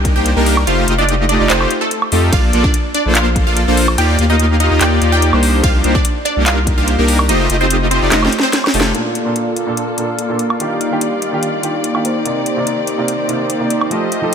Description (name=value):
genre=future bass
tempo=145 BPM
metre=4/4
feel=half-time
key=Bb major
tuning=A4 = 441 Hz
part: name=wide unison pluck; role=melody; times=0.0-8.7 s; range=A3 to G5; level=-19 LUFS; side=right 1 dB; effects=phaser, sidechain pumping, ping-pong delay
part: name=soft supersaw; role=riff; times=0.0-14.3 s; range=A3 to F5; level=-16 LUFS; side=equal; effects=sidechain pumping, low-pass filter, digital delay
part: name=saturated sub bass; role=bass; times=0.0-8.9 s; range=F1 to F2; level=-16 LUFS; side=equal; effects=sidechain pumping
part: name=electronic kick drum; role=drums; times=0.0-6.8 s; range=none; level=-16 LUFS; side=equal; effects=none
part: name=trap drum kit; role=drums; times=0.1-14.2 s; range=handclaps, hi-hat, ride cymbal, snare drum, woodblock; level=-19 LUFS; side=equal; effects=none
part: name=warm baby grand piano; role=accompaniment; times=8.9-14.3 s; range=Bb2 to D5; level=-22 LUFS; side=right 2 dB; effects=sidechain pumping, digital delay
part: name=rich studio string section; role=sustained chords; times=8.9-14.3 s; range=D3 to Eb5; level=-26 LUFS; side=left 1 dB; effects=sidechain pumping, low-pass filter
room=light reverb, digital ambience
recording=none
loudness=-12 LUFS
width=side -7 dB against mid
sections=0.0-8.9 A section; 8.9-14.3 B section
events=drop 0.0-8.9; kick drops out 8.1-8.9; drum fill 8.1-8.9; band accent 8.8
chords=0.0 Cm9; 0.7 F9; 2.3 Bbmaj7; 4.0 Cm9; 7.3 F9; 8.9 Bbmaj7; 10.6 Ebmaj9; 12.0 Cm9